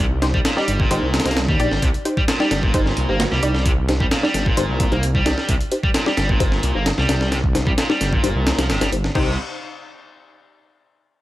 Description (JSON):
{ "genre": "breakbeat, breaks", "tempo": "131 BPM", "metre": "4/4", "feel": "straight", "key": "C minor", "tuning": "A4 = 439 Hz", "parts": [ { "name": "overdriven electric guitar", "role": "riff", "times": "0.0-9.4 s", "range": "Bb2 to Bb3", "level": "-24 LUFS", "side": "equal", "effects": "vintage 12-bit sampler grit, low-pass filter, dub echo" }, { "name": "detuned saw bass", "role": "bass", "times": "0.0-9.4 s", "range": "G1 to Eb2", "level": "-21 LUFS", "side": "equal", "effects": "tube saturation" }, { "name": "filtered dub chord stab", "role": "stabs", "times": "0.2-9.3 s", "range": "Eb4 to D5", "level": "-25 LUFS", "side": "left 1 dB", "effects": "chorus, dub echo" }, { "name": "breakbeat sampler-style drum kit", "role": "drums", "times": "0.2-9.2 s", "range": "crash cymbal, hi-hat, kick drum, snare drum", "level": "-20 LUFS", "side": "equal", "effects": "studio ambience" } ], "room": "light reverb", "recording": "none", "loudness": "-16 LUFS", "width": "side -16 dB against mid", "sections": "0.0-9.2 A section; 9.2-11.0 B section", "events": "filter sweep on synth stab 0.0-9.2", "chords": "0.0 Cm" }